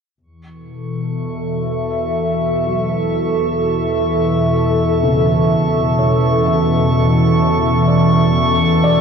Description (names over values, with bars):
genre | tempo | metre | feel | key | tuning
ambient | 63 BPM | 4/4 | straight | unclear | A4 = 440 Hz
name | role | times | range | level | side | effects
warbly tape-like pad | sustained chords | 0.8-9.0 s | B2 to E5 | -15 LUFS | equal | chorus, built-in reverb, phaser, shimmer reverb
dark chamber double bass section | bass | 0.2-9.0 s | E2 | -27 LUFS | left 1 dB | none
analog drone | drone | 3.3-9.0 s | E3 | -27 LUFS | equal | none
drifting glass-harmonics texture | texture | 0.9-9.0 s | C#6 | -24 LUFS | right 2 dB | chorus, built-in reverb, shimmer reverb
felt-muted upright piano | arpeggios | 2.7-9.0 s | C#3 to E5 | -24 LUFS | left 2 dB | ping-pong delay
room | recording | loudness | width
wet cathedral reverb, RT60 5.0 s | dark, warm production | -14 LUFS | side -6 dB against mid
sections
0.2-9.0 A section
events
fade-in on felt piano 0.2-9.0; fade-in on double bass section 0.2-9.0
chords
0.2 E7sus4